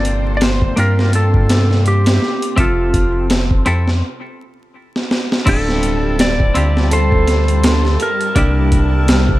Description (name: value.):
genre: trip hop.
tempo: 83 BPM.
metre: 4/4.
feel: swing 58% on 16ths.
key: D minor.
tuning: A4 = 440 Hz.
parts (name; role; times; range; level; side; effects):
clean lap steel guitar; melody; 0.0-9.4 s; F4 to D5; -21 LUFS; equal; vintage 12-bit sampler grit.
semi-hollow electric guitar; accompaniment; 0.0-9.4 s; Bb3 to E5; -23 LUFS; equal; tremolo, vintage 12-bit sampler grit.
string machine, cellos; sustained chords; 0.0-9.4 s; G3 to A5; -24 LUFS; equal; phaser, ensemble chorus.
round analog bass; bass; 0.0-9.4 s; D1 to G2; -16 LUFS; equal; none.
boom bap sampler-style drum kit; drums; 0.0-9.4 s; crash cymbal, hi-hat, kick drum, snare drum; -17 LUFS; equal; none.
nylon-string guitar; arpeggios; 5.5-9.4 s; D3 to A4; -22 LUFS; right 2 dB; tape echo.
room: little or no reverb.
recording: vinyl crackle.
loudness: -12 LUFS.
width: side -16 dB against mid.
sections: 0.0-5.5 A section; 5.5-9.4 B section.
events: break 4.0-5.5; drum fill 4.9-5.5.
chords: 0.0 Gm9; 2.6 Fmaj7; 5.5 Dm11; 8.4 C9.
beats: 0.41 1.13 1.85 | 2.58 3.30 4.02 4.75 | 5.47 6.19 6.92 7.64 | 8.36 9.08.